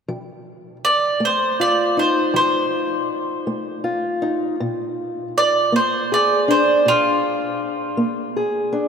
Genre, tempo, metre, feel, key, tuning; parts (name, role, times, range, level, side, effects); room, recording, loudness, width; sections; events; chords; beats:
acoustic country blues, solo or duo; 53 BPM (dotted quarters); 12/8; straight; A4 = 441 Hz
fingerpicked old ladder-braced acoustic guitar; accompaniment; 0.1-8.9 s; Bb2 to Ab4; -21 LUFS; equal
mandolin; melody; 0.8-7.6 s; F4 to D5; -19 LUFS; right 1 dB
wet cathedral reverb, RT60 4.9 s; in a vast, echoing space; -17 LUFS; side -6 dB against mid
0.1-8.9 A section
0.1 F7; 4.6 Bb7
| 0.08 1.21 2.34 3.47 | 4.59 5.72 6.84 7.97